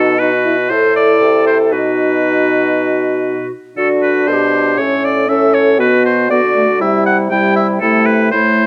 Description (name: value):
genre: classical, renaissance-style consort dance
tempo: 118 BPM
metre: 4/4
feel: straight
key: unclear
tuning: A4 = 440 Hz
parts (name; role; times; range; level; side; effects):
- clear oboe; melody; 0.0-8.7 s; A4 to G5; -18 LUFS; equal; none
- mellow tenor recorder; second line; 0.0-8.7 s; E4 to A4; -18 LUFS; equal; none
- warm trombone; accompaniment; 0.0-8.7 s; G3 to E4; -20 LUFS; equal; none
- mellow bassoon; bass; 0.0-8.7 s; A2 to D3; -21 LUFS; equal; none
room: moderate recital hall reverb, RT60 1.5 s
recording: close, detailed microphones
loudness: -13 LUFS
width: mono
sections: 0.0-8.7 A section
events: none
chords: 0.0 B; 0.7 Am; 1.7 B; 3.8 D; 4.8 A; 5.8 Bm; 6.8 C; 7.8 Am/C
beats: 0.20 0.70 1.21 | 1.72 2.23 2.74 3.25 | 3.77 4.28 4.78 5.29 | 5.79 6.30 6.80 7.31 | 7.81 8.32